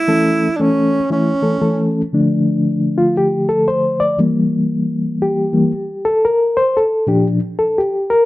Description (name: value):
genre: soul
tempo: 117 BPM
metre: 4/4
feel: swing 62% on 8ths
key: D minor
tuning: A4 = 440 Hz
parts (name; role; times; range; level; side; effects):
- breathy tenor saxophone; melody; 0.0-1.9 s; C#4 to E4; -17 LUFS; right 2 dB; plate reverb
- reed electric piano; accompaniment; 0.1-8.3 s; Bb2 to D5; -14 LUFS; left 1 dB; medium tremolo, plate reverb
room: wet club reverb, RT60 0.5 s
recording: dark, warm production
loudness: -14 LUFS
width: side -17 dB against mid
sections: 0.0-2.1 A section; 2.1-8.3 B section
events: reed electric piano solo 2.1-8.3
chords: 0.1 A; 2.1 Dm; 4.2 Edim; 6.2 Bb